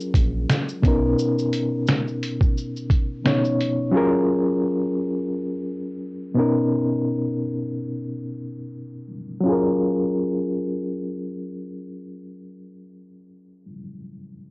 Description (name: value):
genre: lo-fi hip hop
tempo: 87 BPM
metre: 4/4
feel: swing 57% on 16ths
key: F# major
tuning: A4 = 440 Hz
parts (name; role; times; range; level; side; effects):
- barky reed electric piano; accompaniment; 0.0-14.5 s; B2 to C#5; -22 LUFS; equal; overdrive, fast tremolo, cassette tape
- lo-fi sampler-style drum kit; drums; 0.0-3.8 s; finger snaps, hi-hat, kick drum, shaker, snare drum; -20 LUFS; equal; none
- round analog bass; bass; 0.1-1.2 s; A#1 to B1; -25 LUFS; equal; none
room: moderate small room reverb, RT60 0.5 s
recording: home recording on cassette, low-pass filter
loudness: -20 LUFS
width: side -26 dB against mid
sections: 0.0-9.5 A section; 9.5-12.2 B section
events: filter sweep 0.0-9.5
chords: 0.0 F#maj9; 0.8 Bmaj7; 3.9 F#maj9; 6.3 Bmaj7; 9.5 F#maj9